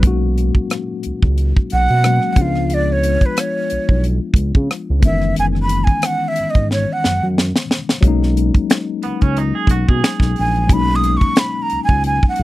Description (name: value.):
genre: R&B, neo-soul.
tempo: 90 BPM.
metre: 4/4.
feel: swing 54% on 16ths.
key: B major.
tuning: A4 = 438 Hz.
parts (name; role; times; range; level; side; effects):
breathy jazz flute; melody; 0.0-12.4 s; B4 to D#6; -19 LUFS; right 2 dB; slapback echo.
tine electric piano; accompaniment; 0.0-12.4 s; D#3 to F#4; -22 LUFS; left 6 dB; medium stereo tremolo.
smooth synth bass; bass; 0.0-12.4 s; F#1 to C#3; -18 LUFS; equal; none.
tight funk drum kit; drums; 0.0-12.4 s; finger snaps, hi-hat, kick drum, rim click, snare drum; -14 LUFS; equal; none.
electric guitar through a small old amp; second line; 9.0-10.8 s; B3 to G#4; -24 LUFS; right 7 dB; tremolo.
room: little or no reverb.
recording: dry, close 1970s-style studio recording.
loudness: -14 LUFS.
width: side -17 dB against mid.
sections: 0.0-12.4 A section.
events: flute solo 0.0-12.4; drum fill 6.7-8.0.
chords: 0.0 B69; 2.4 C#7b9; 5.0 F#9sus4; 8.0 B69.